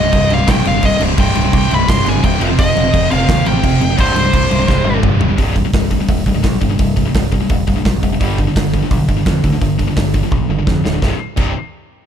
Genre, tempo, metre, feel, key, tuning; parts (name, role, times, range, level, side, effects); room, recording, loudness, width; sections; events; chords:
heavy metal; 171 BPM; 4/4; straight; A4 = 440 Hz
nasal lead guitar with a parked wah; melody; 0.0-5.0 s; C5 to C6; -18 LUFS; right 1 dB; overdrive
distorted electric guitar; riff; 0.0-11.5 s; C2 to G3; -20 LUFS; right 10 dB; distortion
heavy high-gain guitar; riff; 0.0-11.5 s; C2 to G3; -19 LUFS; left 12 dB; distortion
high-gain distorted guitar; riff; 0.0-5.4 s; C2 to F3; -21 LUFS; right 1 dB; distortion
growling picked electric bass; bass; 0.0-11.5 s; C1 to F2; -19 LUFS; right 1 dB; overdrive
big rock drum kit; drums; 0.1-11.5 s; crash cymbal, hi-hat, kick drum, snare drum, toms; -17 LUFS; right 1 dB
studio ambience; dark, warm production; -12 LUFS; side -8 dB against mid
0.0-5.4 A section; 5.4-11.0 B section; 11.0-12.1 C section
half time 0.0-5.4; drum fill 4.7-5.4, 10.3-11.0
0.0 Cm; 2.4 F5; 4.0 C5; 8.2 G5; 11.0 C5